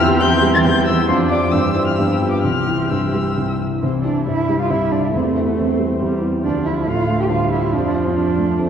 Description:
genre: quick classical-period movement for piano quintet.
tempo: 138 BPM.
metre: 3/4.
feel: rubato.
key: C major.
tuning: A4 = 440 Hz.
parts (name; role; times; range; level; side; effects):
muted violin; melody; 0.0-8.7 s; B4 to A6; -24 LUFS; left 4 dB; none.
muted cello; second line; 0.0-8.7 s; E3 to G4; -22 LUFS; right 4 dB; none.
muted violin; second line; 0.0-8.7 s; F4 to C5; -26 LUFS; left 3 dB; none.
dark baby grand piano; accompaniment; 0.0-8.7 s; C2 to D5; -19 LUFS; equal; none.
muted viola; accompaniment; 0.0-8.7 s; E3 to D4; -23 LUFS; right 2 dB; none.
room: wet church reverb, RT60 2.9 s.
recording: dark, warm production.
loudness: -15 LUFS.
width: side -8 dB against mid.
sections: 0.0-3.8 A section; 3.8-8.7 B section.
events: none.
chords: 0.0 C/E; 1.1 Dm/F; 1.5 C/G; 2.0 G7; 2.4 C; 5.1 C/E; 6.4 Dm; 7.7 Dm/F.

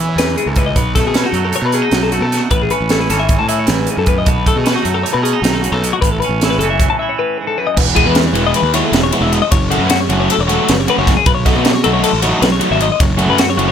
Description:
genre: math rock and midwest emo.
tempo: 308 BPM (eighths).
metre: 9/8.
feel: straight.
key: A lydian.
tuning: A4 = 440 Hz.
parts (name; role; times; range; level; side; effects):
twangy electric guitar; accompaniment; 0.0-9.5 s; E2 to E4; -21 LUFS; right 9 dB; none.
twelve-string electric guitar; arpeggios; 0.0-13.7 s; F#4 to A5; -18 LUFS; left 9 dB; none.
fuzz fingered electric bass; bass; 0.0-13.7 s; E1 to E3; -18 LUFS; equal; overdrive.
crisp fusion drum kit; drums; 0.2-13.7 s; crash cymbal, hi-hat, kick drum, ride cymbal, snare drum; -16 LUFS; right 1 dB; none.
crunchy overdriven guitar; riff; 7.9-13.7 s; E3 to F#4; -16 LUFS; right 1 dB; none.
room: little or no reverb.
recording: none.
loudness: -12 LUFS.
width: side -8 dB against mid.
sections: 0.0-7.8 A section; 7.8-13.7 B section.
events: break 6.9-7.8.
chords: 0.0 E69; 0.8 B7; 2.5 Amaj9; 4.3 B7; 6.0 A6; 7.8 Emaj7; 9.5 F#m; 11.3 B7sus2; 13.0 F#m.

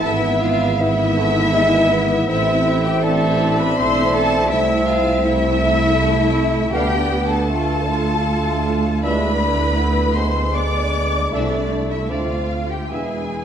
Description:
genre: classical.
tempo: 80 BPM.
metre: 3/4.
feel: uneven beats, rubato.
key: A minor.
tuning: A4 = 436 Hz.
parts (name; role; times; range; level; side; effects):
warm studio violin section; melody; 0.0-13.4 s; D5 to D6; -29 LUFS; left 5 dB; none.
mellow hollow small flute group; second line; 0.0-13.4 s; D5 to D6; -26 LUFS; left 3 dB; none.
rich studio violin section; second line; 0.0-13.4 s; D5 to D6; -28 LUFS; left 3 dB; none.
mellow bassoon; accompaniment; 0.0-13.4 s; G#3 to F4; -25 LUFS; equal; none.
rich studio viola section; accompaniment; 0.0-13.4 s; G#3 to F4; -25 LUFS; right 1 dB; none.
mellow French horn section; sustained chords; 0.0-13.2 s; B3 to F4; -27 LUFS; left 4 dB; none.
warm trombone section; sustained chords; 0.0-13.2 s; A2 to B3; -28 LUFS; right 3 dB; none.
bright trumpet section; stabs; 0.0-13.2 s; D5 to F5; -25 LUFS; equal; none.
mellow tuba; bass; 0.0-13.4 s; E1 to D2; -25 LUFS; right 2 dB; none.
rich studio cello section; bass; 0.0-13.4 s; D4 to D5; -25 LUFS; right 2 dB; none.
rich studio double bass section; bass; 0.0-13.4 s; G#1 to E2; -23 LUFS; right 2 dB; none.
room: wet recital hall reverb, RT60 1.5 s.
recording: dark, warm production.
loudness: -16 LUFS.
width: side -8 dB against mid.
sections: 0.0-13.4 A section.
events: none.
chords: 0.0 E/G#; 2.3 Am; 4.5 Am/C; 6.7 Bm7b5/D; 9.0 E7/D; 11.3 Am/C; 12.1 Dm; 12.9 E7.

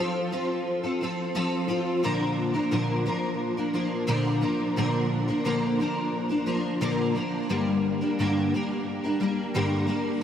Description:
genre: rock.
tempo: 88 BPM.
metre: 4/4.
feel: straight.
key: unclear.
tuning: A4 = 441 Hz.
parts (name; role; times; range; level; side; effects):
picked steel-string acoustic guitar; solo; 0.0-10.2 s; G2 to Bb4; -24 LUFS; equal; ensemble chorus, analog delay.
room: wet huge ambient reverb, RT60 6.2 s.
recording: dreamy mix soaked in reverb.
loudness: -24 LUFS.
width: side -9 dB against mid.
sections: 0.0-10.2 A section.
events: none.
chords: 0.0 F; 2.0 Bb; 7.5 Gm.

